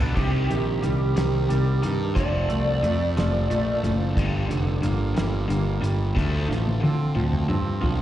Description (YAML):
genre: indie rock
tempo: 60 BPM (dotted quarters)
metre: 6/8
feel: straight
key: C dorian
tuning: A4 = 442 Hz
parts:
  - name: overdriven electric guitar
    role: riff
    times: 0.0-8.0 s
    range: G2 to D4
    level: -30 LUFS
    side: left 6 dB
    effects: spring reverb, slapback echo
  - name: twangy electric guitar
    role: riff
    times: 0.0-8.0 s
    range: G2 to A4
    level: -31 LUFS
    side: right 7 dB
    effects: analog chorus, slapback echo
  - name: fuzz picked electric bass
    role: bass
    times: 0.0-8.0 s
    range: F1 to D3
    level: -23 LUFS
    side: equal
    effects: overdrive
  - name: cloth-damped thuddy drum kit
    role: drums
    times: 0.0-8.0 s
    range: crash cymbal, hi-hat, kick drum, snare drum, toms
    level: -27 LUFS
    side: equal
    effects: none
  - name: lead guitar through a small cranked amp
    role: melody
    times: 0.2-3.8 s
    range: G4 to D5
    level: -27 LUFS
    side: right 2 dB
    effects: overdrive, slapback echo, plate reverb
room: light reverb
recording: live gig heard through the venue's PA, recital hall reverb, nothing above 10.9 kHz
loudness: -21 LUFS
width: side -12 dB against mid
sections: 0.2-8.0 A section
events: drum fill 0.0, 6.2-8.0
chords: 0.2 Cm; 2.2 F; 4.2 Gm; 6.2 Dm7